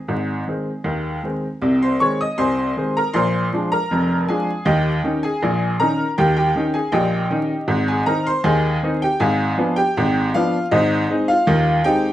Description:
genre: ragtime piano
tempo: 79 BPM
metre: 2/4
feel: straight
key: Ab major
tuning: A4 = 440 Hz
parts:
  - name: bright upright piano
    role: solo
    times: 0.0-12.1 s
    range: F1 to Eb6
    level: -17 LUFS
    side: equal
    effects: none
room: moderate studio reverb, RT60 0.7 s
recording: minimal, uncompressed stereo recording, vinyl crackle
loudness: -17 LUFS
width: side -13 dB against mid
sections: 0.0-1.6 A section; 1.6-12.1 B section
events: none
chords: 0.0 Ab; 1.6 Ab/C; 3.1 Bb7; 4.7 Eb7; 7.7 Ab; 9.2 Abdim7; 10.7 Ab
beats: | 0.09 0.86 | 1.62 2.38 | 3.14 3.90 | 4.66 5.42 | 6.18 6.94 | 7.70 8.45 | 9.21 9.96 | 10.72 11.47

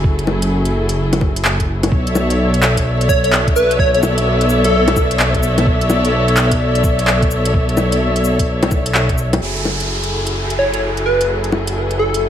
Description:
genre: future garage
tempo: 128 BPM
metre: 4/4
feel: swing 64% on 16ths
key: F# minor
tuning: A4 = 441 Hz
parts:
  - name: warm studio string section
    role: sustained chords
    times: 0.0-12.3 s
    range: F#3 to E5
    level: -19 LUFS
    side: left 1 dB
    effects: vintage 12-bit sampler grit, sidechain pumping
  - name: dark detuned saw bass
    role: bass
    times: 0.0-12.3 s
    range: F#1 to B1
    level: -18 LUFS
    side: equal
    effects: tube saturation, sidechain pumping
  - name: electronic kick drum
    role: drums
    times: 0.0-9.2 s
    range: none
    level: -17 LUFS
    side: equal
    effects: studio reverb
  - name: organic electronic drum kit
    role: drums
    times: 0.2-12.2 s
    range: bongos, cabasa, handclaps, hi-hat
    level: -19 LUFS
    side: left 1 dB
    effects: studio reverb
  - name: plucky unison lead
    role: melody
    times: 3.1-5.1, 10.6-12.2 s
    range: A4 to C#5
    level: -19 LUFS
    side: equal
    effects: dub echo
  - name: downlifter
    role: sound effects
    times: 9.4-12.3 s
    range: none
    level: -24 LUFS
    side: right 2 dB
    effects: none
room: light reverb, digital ambience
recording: vinyl crackle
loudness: -13 LUFS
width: side -10 dB against mid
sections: 0.0-9.4 A section; 9.4-12.3 B section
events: none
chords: 0.0 F#m9; 1.9 Bm11; 9.4 F#m9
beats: | 0.04 0.51 0.98 1.45 | 1.92 2.39 2.86 3.33 | 3.79 4.26 4.73 5.20 | 5.67 6.14 6.61 7.08 | 7.54 8.01 8.48 8.95 | 9.42 9.89 10.36 10.82 | 11.29 11.76 12.23

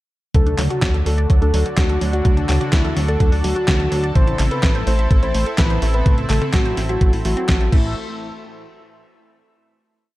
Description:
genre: italo disco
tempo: 126 BPM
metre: 4/4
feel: straight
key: A dorian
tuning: A4 = 440 Hz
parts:
  - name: soft octave-layered synth lead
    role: melody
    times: 0.3-7.9 s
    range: E4 to C5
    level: -24 LUFS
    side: left 1 dB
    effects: chorus, digital delay
  - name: lush unison pad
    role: sustained chords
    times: 0.3-7.9 s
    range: D3 to E5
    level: -27 LUFS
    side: equal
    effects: chorus
  - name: analog pluck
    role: arpeggios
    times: 0.3-7.9 s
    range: F#3 to E5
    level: -30 LUFS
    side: right 3 dB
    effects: chorus, digital delay
  - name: chorused synth bass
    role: bass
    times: 0.3-7.9 s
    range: A1 to D2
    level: -20 LUFS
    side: equal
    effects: none
  - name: clean 12-bit digital drum machine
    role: drums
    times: 0.3-7.8 s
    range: crash cymbal, handclaps, hi-hat, snare drum, toms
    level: -24 LUFS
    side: left 1 dB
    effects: gated reverb
  - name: electronic kick drum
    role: drums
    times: 0.3-7.8 s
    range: none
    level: -16 LUFS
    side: equal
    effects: none
room: little or no reverb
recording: none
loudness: -15 LUFS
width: side -17 dB against mid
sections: 0.3-8.0 chorus; 8.0-9.9 final hit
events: none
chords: 0.3 D; 4.2 Am; 8.0 N.C.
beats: | 0.35 0.82 1.30 1.77 | 2.25 2.73 3.20 3.68 | 4.16 4.63 5.11 5.58 | 6.06 6.54 7.01 7.49

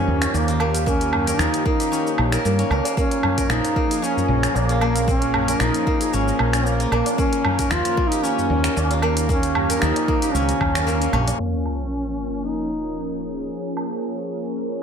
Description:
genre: organic downtempo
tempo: 114 BPM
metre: 4/4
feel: swing 55% on 16ths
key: Bb dorian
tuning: A4 = 440 Hz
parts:
  - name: warm duduk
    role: melody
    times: 0.0-13.2 s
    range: Bb3 to F4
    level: -24 LUFS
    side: equal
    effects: ping-pong delay
  - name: warm analog pad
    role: sustained chords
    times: 0.0-14.8 s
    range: Eb3 to Bb4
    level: -27 LUFS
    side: equal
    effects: chorus, sidechain pumping
  - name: steel-string zither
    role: arpeggios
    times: 0.0-14.1 s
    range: F3 to Bb4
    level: -25 LUFS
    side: right 1 dB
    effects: ping-pong delay
  - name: woody fretless electric bass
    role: bass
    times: 0.1-11.3 s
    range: Ab1 to G2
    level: -22 LUFS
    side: equal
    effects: tube saturation, ensemble chorus
  - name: tabla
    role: percussion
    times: 0.1-11.4 s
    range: none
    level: -31 LUFS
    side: left 2 dB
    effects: none
  - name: organic electronic drum kit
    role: drums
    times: 0.2-14.8 s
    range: cabasa, finger snaps, hi-hat, woodblock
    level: -26 LUFS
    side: right 1 dB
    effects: overdrive
  - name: electronic kick drum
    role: drums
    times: 0.9-10.7 s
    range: none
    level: -24 LUFS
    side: equal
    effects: overdrive
  - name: sub drop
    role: sound effects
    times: 11.4-13.5 s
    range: none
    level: -30 LUFS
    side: equal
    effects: none
room: light reverb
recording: low-pass filter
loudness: -18 LUFS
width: side -7 dB against mid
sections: 0.0-11.4 A section; 11.4-14.8 B section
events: impact 11.4-13.5; filter sweep on analog synth pad 11.4-14.8; filter sweep 11.4-14.8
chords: 0.0 Eb7; 3.0 Bbm7; 7.2 Eb7; 11.4 Bbm7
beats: 0.34 | 0.87 1.40 1.92 2.45 | 2.98 3.50 4.03 4.55 | 5.08 5.61 6.13 6.66 | 7.19 7.71 8.24 8.77 | 9.29 9.82 10.34 10.87 | 11.40 11.92 12.45 12.98 | 13.50 14.03 14.55

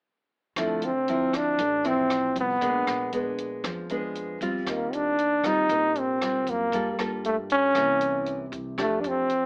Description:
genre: bossa nova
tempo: 117 BPM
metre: 4/4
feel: straight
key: D minor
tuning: A4 = 440 Hz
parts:
  - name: warm trombone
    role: melody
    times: 0.6-9.5 s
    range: A3 to Eb4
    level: -26 LUFS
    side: equal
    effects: none
  - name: nylon-string guitar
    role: accompaniment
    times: 0.6-9.5 s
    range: A2 to A4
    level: -33 LUFS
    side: equal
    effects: none
  - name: upright bass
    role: bass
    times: 0.6-9.5 s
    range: A1 to G2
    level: -45 LUFS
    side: equal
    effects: none
  - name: compact cocktail drum kit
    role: drums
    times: 0.6-9.4 s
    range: hi-hat, kick drum, rim click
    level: -38 LUFS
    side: equal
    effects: none
room: light reverb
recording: AM radio sound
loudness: -26 LUFS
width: mono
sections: 0.6-9.5 A section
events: none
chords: 0.6 Dm9; 2.6 Bb7b9; 4.7 Eb69; 6.7 Gm9; 7.8 C7b9; 8.8 F69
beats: | 0.57 1.08 1.59 2.11 | 2.62 3.13 3.65 4.16 | 4.67 5.19 5.70 6.22 | 6.73 7.24 7.76 8.27 | 8.78 9.30

